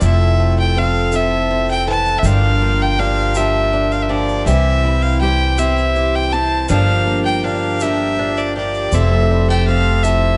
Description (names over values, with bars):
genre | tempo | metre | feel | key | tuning
acoustic folk duo or small band | 54 BPM (dotted quarters) | 6/8 | straight | G dorian | A4 = 438 Hz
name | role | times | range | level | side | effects
clear fiddle | melody | 0.0-10.4 s | D5 to A5 | -21 LUFS | equal | none
picked twelve-string acoustic guitar | accompaniment | 0.0-10.4 s | G2 to A4 | -25 LUFS | equal | none
pedal harmonium | sustained chords | 0.0-10.4 s | C4 to A5 | -30 LUFS | equal | none
picked swing-style acoustic guitar | arpeggios | 0.0-10.4 s | E3 to G4 | -27 LUFS | equal | none
upright bass | bass | 0.0-10.4 s | F1 to C2 | -20 LUFS | equal | none
egg shaker | percussion | 0.0-10.2 s | none | -36 LUFS | equal | none
room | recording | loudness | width
light reverb | nothing above 10.7 kHz | -16 LUFS | mono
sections
0.0-10.4 A section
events
none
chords
0.0 Fmaj7; 2.2 Gm7; 4.5 C; 6.7 Gm7; 8.9 Fmaj7